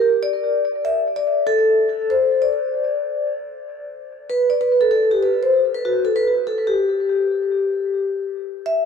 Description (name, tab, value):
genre	hip hop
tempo	96 BPM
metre	4/4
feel	swing 66% on 16ths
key	G major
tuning	A4 = 439 Hz
part	vibraphone with soft mallets	solo	0.0-8.9 s	F#4 to E5	-17 LUFS	left 1 dB	dub echo
room	moderate plate reverb, RT60 2.5 s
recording	echo-heavy mix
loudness	-17 LUFS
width	side -6 dB against mid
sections	0.0-3.7 A section; 3.7-8.9 B section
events	vibraphone solo 0.0-3.7, 3.7-8.9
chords	none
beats	0.53 | 1.16 1.78 2.41 3.03 | 3.66 4.28 4.91 5.53 | 6.16 6.78 7.41 8.03 | 8.66